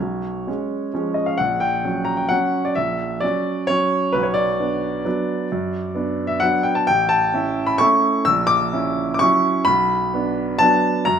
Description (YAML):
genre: classical, piano waltz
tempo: 130 BPM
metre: 3/4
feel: rubato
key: B minor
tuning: A4 = 440 Hz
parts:
  - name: warm baby grand piano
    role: solo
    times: 0.0-11.2 s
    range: A1 to E6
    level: -17 LUFS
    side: equal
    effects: none
room: moderate recital hall reverb, RT60 1.6 s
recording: close, detailed microphones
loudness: -17 LUFS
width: side -8 dB against mid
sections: 0.0-11.2 A section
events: none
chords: 0.0 C#7/B; 1.4 F#/A#; 4.1 Bm; 6.9 A; 8.3 F#7/A#; 9.7 Bm